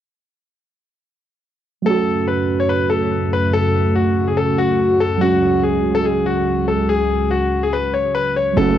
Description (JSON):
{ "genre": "hip hop", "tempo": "143 BPM", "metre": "4/4", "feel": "half-time", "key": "F# minor", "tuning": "A4 = 440 Hz", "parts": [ { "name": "muted felt-like synth keys", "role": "accompaniment", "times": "1.8-8.8 s", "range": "F#3 to F#4", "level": "-21 LUFS", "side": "right 6 dB", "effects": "chorus, low-pass filter, cassette tape" }, { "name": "bright concert grand piano", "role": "melody", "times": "1.9-8.8 s", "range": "F#4 to C#5", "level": "-19 LUFS", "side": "left 5 dB", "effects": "low-pass filter, cassette tape, tape echo" }, { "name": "dark analog pad", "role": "sustained chords", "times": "1.9-8.5 s", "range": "C#2 to F#4", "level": "-20 LUFS", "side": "right 1 dB", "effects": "chorus, cassette tape" }, { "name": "distorted 808-style bass", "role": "bass", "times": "8.6-8.8 s", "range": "F#1", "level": "-18 LUFS", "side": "equal", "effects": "distortion" } ], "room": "moderate small room reverb, RT60 0.5 s", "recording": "home recording on cassette", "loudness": "-15 LUFS", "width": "side -10 dB against mid", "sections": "1.9-8.6 A section", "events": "none", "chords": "1.9 F#m; 5.2 C#sus4" }